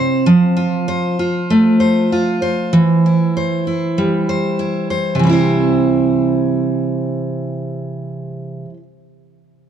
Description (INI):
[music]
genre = pop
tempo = 97 BPM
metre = 4/4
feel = swing 55% on 16ths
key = C major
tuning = A4 = 445 Hz
[part]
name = picked steel-string acoustic guitar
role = accompaniment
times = 0.0-8.8 s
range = C3 to C5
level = -14 LUFS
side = right 1 dB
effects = none
[sound]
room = moderate plate reverb, RT60 3.4 s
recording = dark, warm production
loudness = -14 LUFS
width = side -9 dB against mid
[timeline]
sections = 0.3-5.2 A section; 5.2-7.7 B section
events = none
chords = 0.3 F; 2.7 C/E